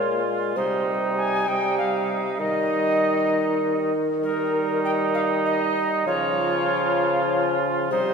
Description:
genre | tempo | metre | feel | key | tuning
classical | 65 BPM (dotted quarters) | 6/8 | straight | unclear | A4 = 440 Hz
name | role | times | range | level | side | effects
alto recorder | melody | 0.0-8.1 s | Bb4 to Ab5 | -26 LUFS | left 2 dB | none
mellow cor anglais | second line | 0.0-8.1 s | Eb4 to F4 | -26 LUFS | right 4 dB | none
clear trombone | accompaniment | 0.0-8.1 s | F3 to Ab3 | -28 LUFS | equal | none
mellow bassoon | bass | 0.0-8.1 s | Bb2 to Eb3 | -26 LUFS | equal | none
room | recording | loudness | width
wet church reverb, RT60 3.4 s | recorded in a church or concert hall | -20 LUFS | side -5 dB against mid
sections
0.0-8.1 A section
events
none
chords
0.0 Bbm; 0.6 Cm; 2.4 Eb; 6.1 Db

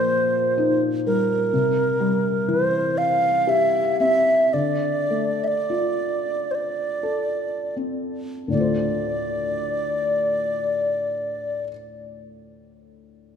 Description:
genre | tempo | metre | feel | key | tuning
celtic folk, Celtic slow air | 39-64 BPM | 3/4 | rubato | D minor | A4 = 440 Hz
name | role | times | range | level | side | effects
baroque flute | melody | 0.0-11.6 s | Bb4 to F5 | -21 LUFS | right 1 dB | none
felt-muted upright piano | accompaniment | 0.0-13.4 s | D2 to C5 | -25 LUFS | left 4 dB | none
room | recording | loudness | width
wet church reverb, RT60 2.9 s | minimal, uncompressed stereo recording | -20 LUFS | side -7 dB against mid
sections
0.0-8.5 A section; 8.5-13.0 B section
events
slowing down 1.5-8.5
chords
0.0 Ebadd9/Bb; 1.5 C; 4.5 Dm7

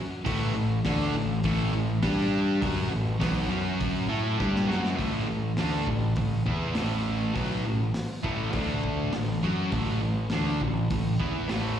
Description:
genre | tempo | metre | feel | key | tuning
garage rock duo or trio | 101 BPM | 4/4 | straight | A mixolydian | A4 = 440 Hz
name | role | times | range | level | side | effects
fuzz guitar | riff | 0.2-11.8 s | A2 to A4 | -27 LUFS | equal | distortion, slapback echo
fuzz picked electric bass | bass | 0.3-11.8 s | A1 to A2 | -30 LUFS | equal | overdrive
crunchy breakbeat drum kit | drums | 0.3-11.6 s | hi-hat, kick drum, snare drum | -32 LUFS | equal | none
room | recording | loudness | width
light reverb | live gig heard through the venue's PA, recital hall reverb | -25 LUFS | side -9 dB against mid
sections
0.0-5.0 A section; 5.0-11.8 B section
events
drum fill 4.4-5.0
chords
0.0 A5; 2.0 G5; 2.6 A; 3.5 F#5; 4.1 A; 5.0 A5; 8.5 D5; 9.1 A5

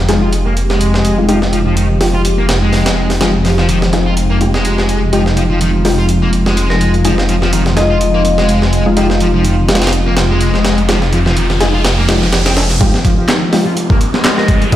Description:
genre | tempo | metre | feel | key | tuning
breakbeat, breaks | 125 BPM | 4/4 | swing 55% on 16ths | F minor | A4 = 439 Hz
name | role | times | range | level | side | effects
phased analog pad | sustained chords | 0.0-14.8 s | F3 to G4 | -18 LUFS | left 1 dB | phaser, chorus, sidechain pumping
detuned saw bass | bass | 0.0-14.8 s | F1 | -15 LUFS | equal | high-pass filter
orchestra-hit-like synth stab | stabs | 0.1-14.8 s | Ab3 to Ab4 | -18 LUFS | left 2 dB | built-in reverb, dub echo
breakbeat sampler-style drum kit | drums | 0.1-14.8 s | hi-hat, kick drum, snare drum | -16 LUFS | equal | high-pass filter on hats, small room ambience, high-pass filter on kick, high-pass filter on snare
fuzz guitar | riff | 0.2-14.8 s | Eb3 to F4 | -18 LUFS | equal | distortion, vintage 12-bit sampler grit, low-pass filter, dub echo
vibraphone with medium hard mallets | melody | 6.7-8.4, 14.4-14.6 s | Bb4 to Eb5 | -20 LUFS | left 4 dB | telephone sound, dub echo
riser | sound effects | 10.0-14.8 s | none | -23 LUFS | right 1 dB | none
electronic handclaps | drums | 13.3-14.4 s | none | -21 LUFS | equal | overdrive, small room ambience
room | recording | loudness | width
light reverb, digital ambience | played on a big sound system in a bare room, stone room reverb | -10 LUFS | side -12 dB against mid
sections
0.0-12.8 A section; 12.8-14.8 B section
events
riser 10.0-12.8, 12.8-14.8; build-up 12.8-14.8; filter sweep on distorted electric guitar 12.8-14.8; filter sweep on synth stab 12.8-14.8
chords
0.0 Fm9

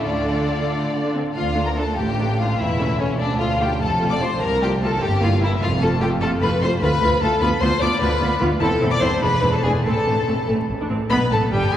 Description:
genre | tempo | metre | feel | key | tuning
quick classical-period movement for string orchestra | 99 BPM (dotted quarters) | 6/8 | rubato | D minor, A minor from 6.2 s | A4 = 440 Hz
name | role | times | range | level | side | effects
rich chamber violin section | melody | 0.0-11.8 s | C#5 to D6 | -27 LUFS | left 4 dB | none
clear chamber violin section | second line | 0.0-11.8 s | C#4 to D5 | -22 LUFS | left 2 dB | none
rich chamber viola section | accompaniment | 0.0-11.8 s | G3 to F4 | -25 LUFS | right 1 dB | none
clear chamber double bass section | bass | 0.0-11.8 s | E1 to D2 | -24 LUFS | right 1 dB | none
rich chamber cello section | bass | 0.0-11.8 s | C2 to D3 | -24 LUFS | right 1 dB | none
room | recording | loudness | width
wet cathedral reverb, RT60 5.1 s | recorded in a church or concert hall, vinyl crackle | -17 LUFS | side -11 dB against mid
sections
0.0-1.4 A section; 1.4-11.1 A section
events
none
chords
0.0 Dm; 1.4 D5; 2.6 A/E; 3.2 Dm; 3.8 F; 5.0 Gm6; 5.6 F; 6.8 Dm; 7.4 Bdim/D; 8.6 Am; 9.2 E7; 9.9 Am; 11.1 Gadd9

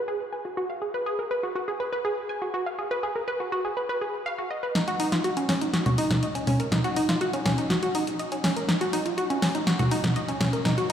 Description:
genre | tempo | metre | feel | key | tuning
melodic techno | 122 BPM | 4/4 | straight | Eb minor | A4 = 439 Hz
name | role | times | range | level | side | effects
wide unison pluck | arpeggios | 0.1-10.9 s | Db4 to Ab5 | -26 LUFS | equal | tape echo
house drum kit | drums | 4.8-10.9 s | congas, hi-hat, snare drum | -25 LUFS | equal | none
round analog bass | bass | 5.0-10.9 s | Eb1 to Bb1 | -41 LUFS | equal | none
room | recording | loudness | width
moderate huge ambient reverb, RT60 4.7 s | played on a big sound system in a bare room, large studio reverb | -24 LUFS | side -9 dB against mid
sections
0.0-4.8 A section; 4.8-10.9 B section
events
filter sweep on synth pluck 0.0-4.8; build-up 4.8-10.9; drum fill 4.8-10.9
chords
0.0 Abm; 4.8 Ebm7

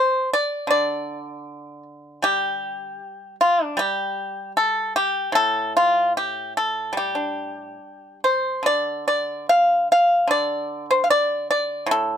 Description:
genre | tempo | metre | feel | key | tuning
chinese traditional, Chinese solo plucked strings | 70-79 BPM | 4/4 | rubato | D yu mode | A4 = 440 Hz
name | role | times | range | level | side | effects
pipa | solo | 0.0-12.2 s | A2 to F5 | -19 LUFS | equal | none
room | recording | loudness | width
light reverb | close, detailed microphones | -19 LUFS | side -8 dB against mid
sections
0.0-12.2 A section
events
none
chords
none

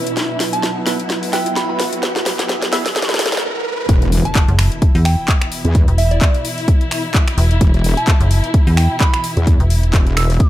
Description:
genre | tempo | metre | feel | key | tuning
bass house | 129 BPM | 4/4 | swing 56% on 16ths | unclear | A4 = 439 Hz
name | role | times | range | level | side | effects
dark studio string section | sustained chords | 0.0-10.5 s | B2 to E4 | -26 LUFS | left 1 dB | sidechain pumping
percussive organ stab | stabs | 0.0-2.8 s | B3 to E5 | -26 LUFS | right 2 dB | wide subtle chorus, sidechain pumping, ping-pong delay
riser and impact | sound effects | 0.0-5.7 s | none | -25 LUFS | right 1 dB | none
airy breathy pad | texture | 0.0-3.4 s | E4 to F#5 | -28 LUFS | right 2 dB | chorus, sidechain pumping
house drum kit | drums | 0.1-10.5 s | finger snaps, handclaps, hi-hat, snare drum | -21 LUFS | left 1 dB | overdrive
soft synth bell | melody | 0.5-10.5 s | D5 to E6 | -24 LUFS | right 2 dB | chorus, ping-pong delay
wobble bass | bass | 3.9-10.4 s | E1 to E2 | -16 LUFS | equal | chorus, sidechain pumping
electronic kick drum | drums | 3.9-10.5 s | none | -13 LUFS | equal | overdrive
metallic FM bass | bass | 4.5-9.9 s | E1 to E2 | -13 LUFS | equal | sidechain pumping
room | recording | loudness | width
light reverb, digital ambience | high-pass filter | -13 LUFS | side -14 dB against mid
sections
0.0-3.9 A section; 3.9-10.5 B section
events
build-up 0.0-3.9; drum fill 0.0-3.4; riser 0.0-3.9; stop 3.4-3.9; drop 3.9-10.5; impact 3.9-5.7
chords
0.0 E5

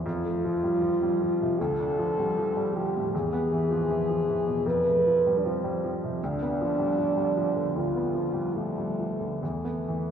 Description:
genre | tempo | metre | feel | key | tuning
classical, romantic duo for French horn and grand piano | 78 BPM | 4/4 | rubato | unclear | A4 = 435 Hz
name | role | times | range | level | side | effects
clear grand piano | accompaniment | 0.0-10.1 s | D2 to D4 | -29 LUFS | right 1 dB | none
mellow French horn | melody | 0.1-10.1 s | A3 to B4 | -26 LUFS | equal | none
room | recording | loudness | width
wet concert hall reverb, RT60 2.0 s | recorded in a church or concert hall | -24 LUFS | side -8 dB against mid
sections
0.0-10.1 A section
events
none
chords
0.1 F; 1.6 Dm; 3.1 E; 4.7 F; 6.2 Bdim/D; 9.4 E5

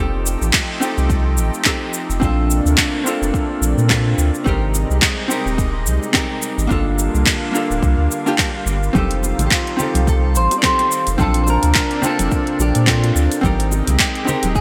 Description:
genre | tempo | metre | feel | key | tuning
sunset chillout | 107 BPM | 4/4 | swing 57% on 16ths | Bb major | A4 = 440 Hz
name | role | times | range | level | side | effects
vintage hollow-body jazz guitar | accompaniment | 0.0-14.6 s | Bb3 to A5 | -24 LUFS | equal | digital delay
lush unison pad | sustained chords | 0.0-14.6 s | C3 to G4 | -29 LUFS | equal | chorus
warm sub bass | bass | 0.0-14.6 s | D1 to Bb2 | -20 LUFS | equal | none
deep house drum kit | drums | 0.3-14.6 s | handclaps, hi-hat, shaker | -23 LUFS | equal | small room ambience, gated reverb
electronic kick drum | drums | 0.5-14.6 s | none | -24 LUFS | equal | small room ambience
congas and bongos | percussion | 9.0-14.5 s | none | -28 LUFS | equal | none
clean electric guitar | melody | 9.5-14.6 s | F4 to D5 | -24 LUFS | equal | subtle chorus, digital delay
room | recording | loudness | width
light reverb | bright 1980s-style digital production | -17 LUFS | mono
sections
0.0-14.6 A section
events
none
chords
0.0 F9; 2.2 Bbmaj9; 4.5 Abmaj7; 6.7 Gm7; 9.0 F9; 11.2 Bbmaj9; 13.4 Abmaj7

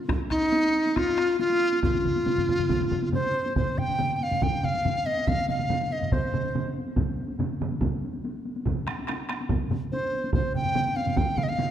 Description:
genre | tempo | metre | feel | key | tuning
japanese traditional, taiko drum ensemble | 141 BPM | 4/4 | straight | unclear | A4 = 441 Hz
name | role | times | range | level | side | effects
solo taiko drums | percussion | 0.1-11.3 s | none | -30 LUFS | right 1 dB | none
taiko ensemble | percussion | 0.1-11.7 s | none | -32 LUFS | left 1 dB | none
taiko ensemble | percussion | 0.1-11.7 s | none | -34 LUFS | left 4 dB | none
large dizi | melody | 0.3-6.8, 9.9-11.7 s | Eb4 to G5 | -25 LUFS | equal | tape echo
solo taiko drums | percussion | 1.8-11.7 s | none | -31 LUFS | right 6 dB | none
room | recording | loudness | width
wet recital hall reverb, RT60 1.3 s | none | -24 LUFS | side -10 dB against mid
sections
0.0-3.6 A section; 3.6-11.7 B section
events
speeding up 0.0-11.7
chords
none

